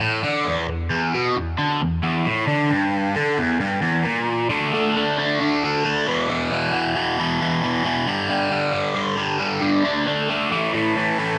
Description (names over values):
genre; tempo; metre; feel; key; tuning
rock; 134 BPM; 4/4; straight; unclear; A4 = 440 Hz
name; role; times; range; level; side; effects
cranked stack guitar; solo; 0.0-11.4 s; E2 to D4; -21 LUFS; equal; overdrive, phaser, analog delay
room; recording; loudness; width
light reverb; none; -21 LUFS; mono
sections
0.0-4.5 A section; 4.5-11.4 B section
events
none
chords
0.0 E5; 4.5 D5; 6.1 E5; 8.1 G5; 9.8 D5; 10.5 A5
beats
0.01 0.46 | 0.91 1.36 1.81 2.26 | 2.71 3.15 3.60 4.05 | 4.50 4.94 5.39 5.84 | 6.28 6.73 7.18 7.62 | 8.07 8.51 8.96 9.40 | 9.85 10.29 10.74 11.18